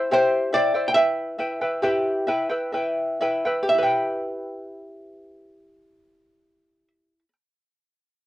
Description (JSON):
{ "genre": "andean folk", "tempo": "61-73 BPM", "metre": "3/4", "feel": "straight", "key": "E minor", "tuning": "A4 = 441 Hz", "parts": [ { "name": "archtop guitar, miked and amplified", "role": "melody", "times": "0.0-6.9 s", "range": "C5 to G5", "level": "-20 LUFS", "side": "equal", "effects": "none" }, { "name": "charango", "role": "accompaniment", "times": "0.0-7.3 s", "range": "E4 to G5", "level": "-23 LUFS", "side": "equal", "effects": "cassette tape" } ], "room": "moderate booth ambience, RT60 0.2 s", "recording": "home recording on cassette", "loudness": "-20 LUFS", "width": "side -14 dB against mid", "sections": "0.0-3.7 A section; 3.7-6.6 B section", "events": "slowing down 0.0-3.7", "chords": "0.0 C; 1.0 Em", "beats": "0.13 | 0.97 1.83 2.74 | 3.70 4.68 5.67" }